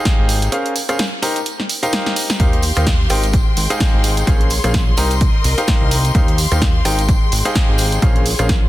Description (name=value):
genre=piano house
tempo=128 BPM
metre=4/4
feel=swing 57% on 16ths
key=Eb major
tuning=A4 = 440 Hz
part: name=bright grand piano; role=riff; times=0.0-8.5 s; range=Db4 to Bb5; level=-22 LUFS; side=equal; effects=sidechain pumping, tape echo
part: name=electronic kick drum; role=drums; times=0.1-8.6 s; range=none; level=-16 LUFS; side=equal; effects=none
part: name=punchy analog drum machine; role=drums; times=0.1-8.6 s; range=hi-hat, rim click, snare drum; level=-22 LUFS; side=right 1 dB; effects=none
part: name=tambourine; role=percussion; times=0.1-8.6 s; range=none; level=-28 LUFS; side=right 4 dB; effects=none
part: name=fat analog bass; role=bass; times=0.2-8.7 s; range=Ab1 to Eb2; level=-18 LUFS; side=equal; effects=sidechain pumping
part: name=rich symphonic string section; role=sustained chords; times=2.4-8.7 s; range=Ab3 to C6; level=-24 LUFS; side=left 4 dB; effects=sidechain pumping
room=little or no reverb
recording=dense, heavily limited modern master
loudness=-13 LUFS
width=side -15 dB against mid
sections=0.0-8.7 A section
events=break 0.5-2.4; drum fill 2.0-2.4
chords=0.0 Abmaj7; 0.5 Bbm9; 1.2 Cm7; 2.4 Eb69; 3.3 Abmaj7; 4.3 Bbm9; 5.0 Cm7; 6.1 Eb69; 7.1 Abmaj7; 8.0 Bbm9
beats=0.05 | 0.52 0.99 1.46 1.93 | 2.40 2.87 3.33 3.80 | 4.27 4.74 5.21 5.68 | 6.15 6.62 7.08 7.55 | 8.02 8.49